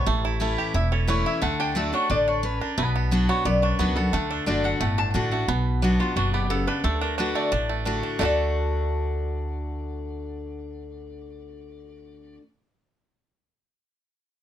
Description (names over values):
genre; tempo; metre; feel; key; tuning
bluegrass; 177 BPM; 4/4; straight; D major; A4 = 442 Hz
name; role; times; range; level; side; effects
bluegrass banjo; melody; 0.0-12.4 s; E3 to A4; -29 LUFS; right 6 dB; none
lap resonator guitar; melody; 0.0-12.4 s; F4 to A5; -27 LUFS; left 1 dB; slapback echo
picked steel-string acoustic guitar; accompaniment; 0.0-12.4 s; E2 to F#4; -28 LUFS; left 2 dB; none
upright bass; bass; 0.1-12.4 s; E1 to D2; -27 LUFS; equal; none
room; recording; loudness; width
light reverb; close, detailed microphones; -22 LUFS; side -11 dB against mid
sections
0.0-5.5 A section; 5.5-8.2 B section; 8.2-10.9 C section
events
none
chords
0.1 A; 1.4 D; 2.8 Bm; 4.1 D; 5.5 Bm; 6.8 D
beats
| 0.07 0.41 0.75 1.09 | 1.42 1.76 2.10 2.44 | 2.78 3.12 3.45 3.79 | 4.13 4.47 4.81 5.15 | 5.49 5.83 6.16 6.50 | 6.84 7.18 7.52 7.86 | 8.20 8.54 8.88 9.22 | 9.56 9.90 10.23 10.57